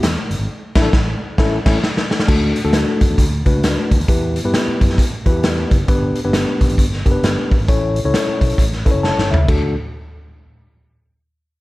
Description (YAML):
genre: uptempo 1960s-style soul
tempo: 133 BPM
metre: 4/4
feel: swing 61% on 8ths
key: D major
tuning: A4 = 440 Hz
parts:
  - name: mellow tine electric piano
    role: accompaniment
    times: 0.0-9.7 s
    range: A3 to A5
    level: -20 LUFS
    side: left 2 dB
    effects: none
  - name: fingered electric bass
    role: bass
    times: 0.0-9.7 s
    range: F#1 to G2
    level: -21 LUFS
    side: equal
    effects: none
  - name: raw garage drum kit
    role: drums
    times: 0.0-9.6 s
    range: crash cymbal, hi-hat, kick drum, snare drum, toms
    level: -16 LUFS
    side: equal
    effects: none
room: light reverb, small room reverb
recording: none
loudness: -14 LUFS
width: side -19 dB against mid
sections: 0.0-2.3 A section; 2.3-9.5 B section; 9.5-11.3 C section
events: band accent 0.5-2.3; drum fill 1.4-2.3, 9.0-9.5; tine electric piano fill 8.8-9.5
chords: 0.5 Asus4; 1.4 A; 2.3 D; 4.1 Em; 5.9 G; 7.7 A; 9.5 D